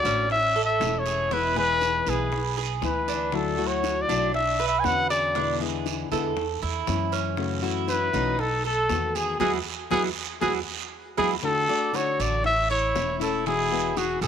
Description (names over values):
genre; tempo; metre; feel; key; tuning
latin, Cuban son and guajira; 119 BPM; 4/4; straight; unclear; A4 = 438 Hz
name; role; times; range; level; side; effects
warm trumpet; melody; 0.0-14.3 s; F#4 to G#5; -25 LUFS; left 1 dB; none
nylon-string guitar; accompaniment; 0.0-14.3 s; B2 to F#4; -31 LUFS; left 10 dB; none
Cuban tres; arpeggios; 0.0-14.3 s; C#4 to D5; -30 LUFS; right 12 dB; none
upright bass; bass; 0.0-14.3 s; E1 to F#2; -32 LUFS; right 2 dB; none
guiro; percussion; 0.0-14.3 s; none; -36 LUFS; right 14 dB; none
bongos; percussion; 0.3-14.3 s; none; -37 LUFS; left 13 dB; none
room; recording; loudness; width
light reverb, studio ambience; 1960s-style stereo with parts hard left and right; -22 LUFS; side -8 dB against mid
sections
0.0-11.4 A section; 11.4-14.3 B section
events
band accent 9.4-11.4; drum fill 10.7-11.4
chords
0.3 A; 1.3 E; 3.3 Dadd9; 4.3 Bmadd9; 5.4 E7; 6.4 A/E; 7.4 F#m7; 8.4 B7; 9.4 Eadd9; 11.4 D; 12.4 A; 13.5 Eadd9